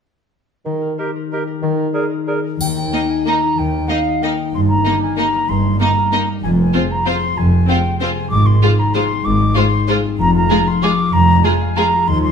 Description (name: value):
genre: classical, orchestral ballroom waltz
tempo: 189 BPM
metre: 3/4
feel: uneven beats, rubato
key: Eb major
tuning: A4 = 440 Hz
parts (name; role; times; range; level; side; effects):
- mellow bassoon; accompaniment; 0.7-1.9 s; Eb3; -23 LUFS; right 5 dB; none
- concert harp; arpeggios; 0.7-12.3 s; F2 to F5; -20 LUFS; left 8 dB; none
- clear clarinet; second line; 1.0-2.4 s; G4 to Ab4; -26 LUFS; right 3 dB; none
- mellow concert flute; second line; 1.0-12.3 s; D5 to D6; -19 LUFS; equal; none
- mellow cor anglais; second line; 1.0-2.4 s; Bb4; -26 LUFS; right 7 dB; none
- dark symphonic cello section; bass; 2.6-12.3 s; Eb2 to Ab2; -20 LUFS; right 2 dB; none
- warm symphonic double bass section; bass; 2.6-12.3 s; F1 to Eb2; -20 LUFS; right 2 dB; none
- triangle; percussion; 2.6-3.2 s; none; -29 LUFS; right 1 dB; none
- rich symphonic violin section; melody; 2.9-11.9 s; Ab4 to Eb5; -27 LUFS; right 1 dB; none
- rich symphonic violin section; second line; 2.9-11.9 s; Eb4 to F4; -25 LUFS; right 2 dB; none
- rich symphonic viola section; accompaniment; 2.9-11.9 s; Ab3 to C4; -22 LUFS; left 1 dB; none
room: wet stone room reverb, RT60 1.1 s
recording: none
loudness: -14 LUFS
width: side -7 dB against mid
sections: 0.7-2.6 A section; 2.6-12.3 B section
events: none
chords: 0.7 Eb; 1.6 Bb7(no3)/Eb; 2.6 Eb; 4.5 Eb/G; 6.4 Fm; 8.3 Fm/Ab (rootless); 10.2 Ddim/F (rootless)